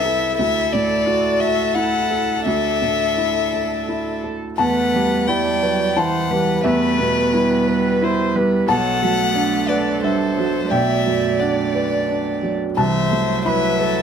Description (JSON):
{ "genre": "neoclassical piano and strings", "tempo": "88 BPM", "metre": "3/4", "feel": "rubato", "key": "E minor", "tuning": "A4 = 437 Hz", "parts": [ { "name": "rich violin", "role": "melody", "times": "0.0-14.0 s", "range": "B4 to G5", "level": "-21 LUFS", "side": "left 6 dB", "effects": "slapback echo, plate reverb" }, { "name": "clear cello", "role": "second line", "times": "0.0-14.0 s", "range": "E3 to F#4", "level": "-25 LUFS", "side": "right 8 dB", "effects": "none" }, { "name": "felt-muted upright piano", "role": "accompaniment", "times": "0.0-14.0 s", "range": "B1 to B5", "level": "-20 LUFS", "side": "right 1 dB", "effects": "none" }, { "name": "warm viola", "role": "accompaniment", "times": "0.0-14.0 s", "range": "A4 to D5", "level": "-24 LUFS", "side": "right 2 dB", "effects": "none" } ], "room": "moderate studio reverb, RT60 0.8 s", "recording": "none", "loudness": "-16 LUFS", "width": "side -7 dB against mid", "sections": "0.0-4.6 A section; 4.6-14.0 B section", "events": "none", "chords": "0.4 Dsus2; 4.6 Em; 8.7 Bm7; 12.8 Amadd9/C", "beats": "| 0.39 1.07 1.76 | 2.47 3.18 3.89 | 4.60 5.29 5.97 | 6.66 7.34 8.02 | 8.69 9.36 10.04 | 10.71 11.40 12.09 | 12.78 13.46" }